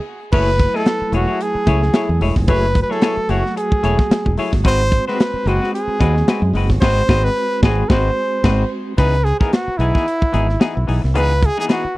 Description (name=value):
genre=funk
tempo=111 BPM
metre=4/4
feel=swing 56% on 16ths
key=unclear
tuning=A4 = 440 Hz
part: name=clear trumpet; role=melody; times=0.3-12.0 s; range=E4 to B#4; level=-20 LUFS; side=right 1 dB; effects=tape echo
part: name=semi-hollow electric guitar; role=accompaniment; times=0.3-11.9 s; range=E3 to D#5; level=-23 LUFS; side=left 4 dB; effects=tremolo
part: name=mellow tonewheel organ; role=sustained chords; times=0.3-8.9 s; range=F#3 to F#4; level=-27 LUFS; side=right 2 dB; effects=chorus vibrato, fast rotary speaker
part: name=fingered electric bass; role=bass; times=0.3-11.9 s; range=E1 to F#2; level=-18 LUFS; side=equal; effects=none
part: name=tight funk drum kit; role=drums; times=0.3-11.8 s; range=crash cymbal, hi-hat, kick drum, snare drum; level=-16 LUFS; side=equal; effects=vintage 12-bit sampler grit
room=small room ambience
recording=dry, close 1970s-style studio recording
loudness=-14 LUFS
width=side -19 dB against mid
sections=0.3-9.0 A section; 9.0-12.0 B section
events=band accent 0.0-0.3, 6.8-9.0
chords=0.3 F#m9; 4.6 G#7#9; 9.0 C#m9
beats=| 0.32 0.86 1.41 1.95 | 2.49 3.03 3.57 4.11 | 4.65 5.19 5.73 6.27 | 6.82 7.36 7.90 8.44 | 8.98 9.53 10.07 10.61 | 11.16 11.70